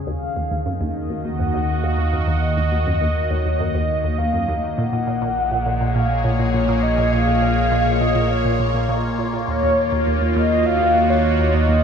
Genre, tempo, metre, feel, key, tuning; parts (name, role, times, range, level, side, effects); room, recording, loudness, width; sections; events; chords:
ambient, sequencer-driven space music; 102 BPM; 4/4; straight; A4 = 439 Hz
phased analog pad; sustained chords; 0.0-11.8 s; Bb2 to Ab5; -22 LUFS; equal; phaser, chorus
resonant blip pluck; riff; 0.0-11.8 s; Eb2 to Bb2; -24 LUFS; right 2 dB; phaser, ping-pong delay
round analog bass; bass; 0.0-11.8 s; Bb1 to Eb2; -24 LUFS; equal
mellow horn-like synth lead; melody; 0.1-11.8 s; Db5 to Gb5; -22 LUFS; left 1 dB; lush chorus, ping-pong delay
wet cathedral reverb, RT60 4.7 s; in a vast, echoing space, cassette tape, nothing above 10.5 kHz; -17 LUFS; side -7 dB against mid
0.0-11.8 A section
filter sweep on synth arpeggio sound 0.0-11.8
0.1 Ebmadd9; 4.8 Bbm7; 9.5 Ebmadd9